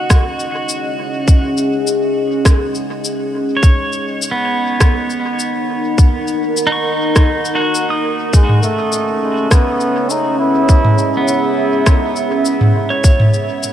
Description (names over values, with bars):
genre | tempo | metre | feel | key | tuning
ambient dub | 102 BPM | 4/4 | swing 53% on 16ths | C# minor | A4 = 436 Hz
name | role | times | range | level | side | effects
deep dark ambient pad | sustained chords | 0.0-13.7 s | C#4 to F#5 | -19 LUFS | equal | chorus, built-in reverb
pedal steel guitar | arpeggios | 0.0-13.7 s | B3 to D#6 | -20 LUFS | right 2 dB | tape echo
electronic kick drum | drums | 0.1-13.2 s | none | -10 LUFS | equal | overdrive
organic electronic drum kit | drums | 0.1-13.7 s | cabasa, rim click, toms | -18 LUFS | equal | overdrive, dub echo
clear trombone | melody | 8.3-11.5 s | G#3 to E4 | -18 LUFS | right 1 dB | tape echo
room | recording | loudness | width
light reverb | none | -12 LUFS | side -11 dB against mid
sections
0.0-13.7 A section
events
none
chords
0.0 C#madd9; 3.6 D#m7; 8.3 C#m9; 13.0 D#7(no3)